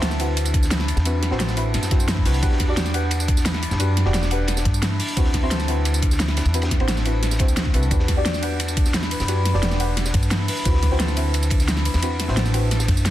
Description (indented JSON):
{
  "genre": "liquid drum and bass",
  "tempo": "175 BPM",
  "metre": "4/4",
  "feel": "straight",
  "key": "unclear",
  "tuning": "A4 = 440 Hz",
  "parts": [
    { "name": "deep mellow chord stab", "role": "accompaniment", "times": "0.0-13.1 s", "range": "C4 to F#5", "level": "-28 LUFS", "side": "left 1 dB", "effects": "chorus, ping-pong delay" },
    { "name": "concert harp", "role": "arpeggios", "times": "0.0-13.1 s", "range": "D4 to B4", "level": "-30 LUFS", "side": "left 1 dB", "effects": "dub echo" },
    { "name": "upright bass", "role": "bass", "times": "0.0-13.1 s", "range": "E1 to G2", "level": "-22 LUFS", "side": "equal", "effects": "none" },
    { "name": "crunchy breakbeat drum kit", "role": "drums", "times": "0.0-13.1 s", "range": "hi-hat, ride cymbal, snare drum", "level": "-31 LUFS", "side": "equal", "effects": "high-pass filter on cymbals, high-pass filter on hats, high-pass filter on snare, high-pass filter on room" },
    { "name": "pop drum kit", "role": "drums", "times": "0.0-13.1 s", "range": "hi-hat, ride cymbal, snare drum, tambourine", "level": "-26 LUFS", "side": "right 1 dB", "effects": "overdrive" },
    { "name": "electronic kick drum", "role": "drums", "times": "0.5-13.0 s", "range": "none", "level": "-21 LUFS", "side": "equal", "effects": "overdrive" }
  ],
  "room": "light reverb, small room reverb",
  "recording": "dense, heavily limited modern master",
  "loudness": "-18 LUFS",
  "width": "side -13 dB against mid",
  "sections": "0.0-13.1 A section",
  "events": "none",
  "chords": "0.0 D13; 2.4 Em9; 5.0 D13; 7.9 Em9; 10.5 D13"
}